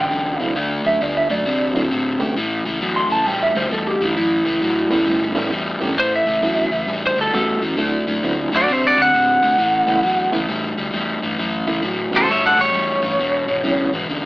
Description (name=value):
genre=blues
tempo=133 BPM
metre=4/4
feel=swing 64% on 8ths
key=A mixolydian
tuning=A4 = 438 Hz
part: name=electric guitar through a small old amp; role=second line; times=0.0-5.5 s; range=E4 to C6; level=-19 LUFS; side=right 1 dB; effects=none
part: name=crunchy overdriven guitar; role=riff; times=0.0-14.3 s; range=E2 to C4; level=-21 LUFS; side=left 1 dB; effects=none
part: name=vintage muted fingered electric bass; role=bass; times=0.0-14.3 s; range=E1 to C3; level=-34 LUFS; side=equal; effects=none
part: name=overdriven reed electric piano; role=accompaniment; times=0.4-13.9 s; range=F#3 to G4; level=-23 LUFS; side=right 1 dB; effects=fast tremolo
part: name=lightly driven lead guitar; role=melody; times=6.0-13.9 s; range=F#4 to F#5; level=-16 LUFS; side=equal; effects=none
room=wet studio reverb, RT60 0.6 s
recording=band playing live in one room, AM radio sound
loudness=-16 LUFS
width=side -20 dB against mid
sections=0.0-6.0 A section; 6.0-14.3 A section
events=clean electric guitar solo 0.0-6.0; lead electric guitar solo 6.0-14.3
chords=0.0 E7sus2; 0.6 D7; 2.4 A9; 7.8 D9; 9.6 A9; 13.2 E9